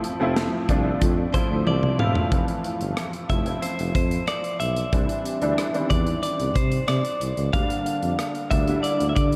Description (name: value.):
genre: 1980s-style pop.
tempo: 92 BPM.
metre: 4/4.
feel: straight.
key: F major.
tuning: A4 = 440 Hz.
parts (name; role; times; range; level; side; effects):
clear baby grand piano; accompaniment; 0.0-9.4 s; D3 to E4; -29 LUFS; equal; ensemble chorus.
modern studio drum kit; drums; 0.0-9.4 s; hi-hat, kick drum, rim click, snare drum, toms; -28 LUFS; equal; none.
warm tuba; bass; 0.2-9.4 s; E1 to D3; -28 LUFS; equal; none.
direct-recorded clean electric guitar; melody; 1.3-9.4 s; C5 to F5; -31 LUFS; equal; diffuse ambient delay.
room: wet cathedral reverb, RT60 5.1 s.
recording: dreamy mix soaked in reverb.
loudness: -24 LUFS.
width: mono.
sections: 0.0-2.3 A section; 2.3-9.4 B section.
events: drum fill 1.7-2.3.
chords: 0.0 Fmaj7; 4.9 Cadd9; 7.5 Gm/D.